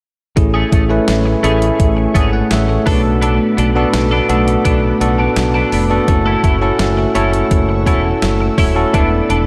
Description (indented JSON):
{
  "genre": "1980s-style pop",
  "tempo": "84 BPM",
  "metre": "4/4",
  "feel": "straight",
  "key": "A major",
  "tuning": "A4 = 439 Hz",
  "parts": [
    { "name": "bell-like tine electric piano", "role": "accompaniment", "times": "0.4-9.5 s", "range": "A3 to A5", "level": "-18 LUFS", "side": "equal", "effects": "none" },
    { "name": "string machine, cellos", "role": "sustained chords", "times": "0.4-9.5 s", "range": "A3 to E6", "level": "-24 LUFS", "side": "equal", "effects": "ensemble chorus" },
    { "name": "twelve-string electric guitar", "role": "riff", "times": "0.4-9.4 s", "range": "A3 to A4", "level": "-24 LUFS", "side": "equal", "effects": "analog chorus, tape echo" },
    { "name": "modern bright fingered electric bass", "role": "bass", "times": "0.4-9.5 s", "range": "D#1 to B1", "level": "-19 LUFS", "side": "equal", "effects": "none" },
    { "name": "clean 12-bit digital drum machine", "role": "drums", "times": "0.4-9.5 s", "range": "hi-hat, kick drum, snare drum", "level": "-20 LUFS", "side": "equal", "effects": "overdrive" }
  ],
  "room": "moderate lush hall reverb, RT60 2.1 s",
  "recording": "dreamy mix soaked in reverb",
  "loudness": "-14 LUFS",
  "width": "mono",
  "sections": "0.4-9.5 A section",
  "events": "none",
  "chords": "0.4 Amaj7; 2.9 Bm7; 6.1 F#m7; 8.9 E7sus4",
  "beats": "| 0.37 1.08 1.80 2.51 | 3.23 3.94 4.65 5.37 | 6.08 6.80 7.51 8.22 | 8.94"
}